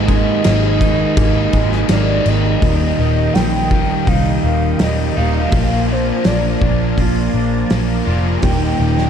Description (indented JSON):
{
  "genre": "rock, shoegaze and dream pop",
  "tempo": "83 BPM",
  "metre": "4/4",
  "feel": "straight",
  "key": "Eb major",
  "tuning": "A4 = 440 Hz",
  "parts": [
    { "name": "pure sine lead", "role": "melody", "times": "0.0-9.1 s", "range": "C5 to G5", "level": "-23 LUFS", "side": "equal", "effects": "chorus, tape echo" },
    { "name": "analog string pad", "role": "sustained chords", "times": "0.0-9.1 s", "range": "Eb4 to Cb6", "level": "-28 LUFS", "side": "equal", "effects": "ensemble chorus" },
    { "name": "twangy electric guitar", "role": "arpeggios", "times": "0.0-9.1 s", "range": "Eb2 to F4", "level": "-27 LUFS", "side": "left 2 dB", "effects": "lush chorus, tape echo" },
    { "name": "crunchy overdriven guitar", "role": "riff", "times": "0.0-9.1 s", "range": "Eb2 to F4", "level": "-22 LUFS", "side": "left 14 dB", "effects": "wide subtle chorus" },
    { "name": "overdriven semi-hollow guitar", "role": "riff", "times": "0.0-9.1 s", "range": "Eb2 to F4", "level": "-20 LUFS", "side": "right 11 dB", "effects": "reverse reverb" },
    { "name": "vintage muted picked electric bass", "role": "bass", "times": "0.0-9.1 s", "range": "Eb1 to C2", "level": "-18 LUFS", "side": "equal", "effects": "none" },
    { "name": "loose indie drum kit", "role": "drums", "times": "0.1-9.1 s", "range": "crash cymbal, hi-hat, kick drum, snare drum", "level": "-20 LUFS", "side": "equal", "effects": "none" }
  ],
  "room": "little or no reverb",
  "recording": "dark, warm production",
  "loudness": "-13 LUFS",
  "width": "side -8 dB against mid",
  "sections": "0.0-2.6 A section; 2.6-9.1 B section",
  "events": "none",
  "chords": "0.0 Abmadd9; 2.6 Eb; 5.5 Bb7; 8.4 Ebmaj7"
}